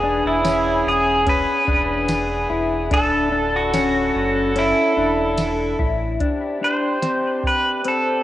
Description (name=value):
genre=dream pop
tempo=73 BPM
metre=4/4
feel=straight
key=D lydian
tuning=A4 = 440 Hz
part: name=pedal steel guitar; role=melody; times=0.0-8.2 s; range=E4 to C5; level=-20 LUFS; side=right 1 dB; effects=tape echo
part: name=muted French horn section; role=sustained chords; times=0.0-8.2 s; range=C3 to A4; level=-25 LUFS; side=right 1 dB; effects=cassette tape
part: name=mellow electric guitar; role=arpeggios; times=0.0-8.2 s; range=C4 to E4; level=-23 LUFS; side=left 4 dB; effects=analog chorus, cassette tape, tape echo
part: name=sub bass with octave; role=bass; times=0.0-6.2 s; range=D1 to A1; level=-28 LUFS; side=right 1 dB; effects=transformer saturation
part: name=soft vintage rhythm box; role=drums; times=0.4-8.0 s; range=hi-hat, kick drum, ride cymbal, snare drum, tambourine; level=-25 LUFS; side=right 1 dB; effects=overdrive, cassette tape
room=wet spring reverb, RT60 2.3 s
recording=home recording on cassette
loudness=-17 LUFS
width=side -14 dB against mid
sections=0.0-6.2 A section; 6.2-8.2 B section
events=none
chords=0.0 E7; 2.9 Dsus2; 6.2 Csus2